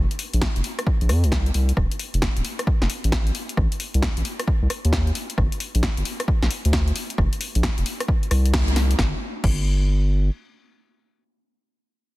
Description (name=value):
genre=UK garage, two-step garage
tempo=133 BPM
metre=4/4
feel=swing 64% on 16ths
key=G minor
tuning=A4 = 442 Hz
part: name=saturated sub bass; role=bass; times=0.0-10.3 s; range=D1 to F2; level=-20 LUFS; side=equal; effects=none
part: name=punchy analog drum machine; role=drums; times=0.1-9.6 s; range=crash cymbal, hi-hat, rim click, snare drum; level=-27 LUFS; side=left 1 dB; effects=overdrive
part: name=electronic kick drum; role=drums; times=0.4-9.6 s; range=none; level=-23 LUFS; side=equal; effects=overdrive
room=digital ambience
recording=dense, heavily limited modern master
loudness=-20 LUFS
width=side -19 dB against mid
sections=0.0-9.0 A section; 9.0-12.2 B section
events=drop 0.0-9.0; band accent 8.5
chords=none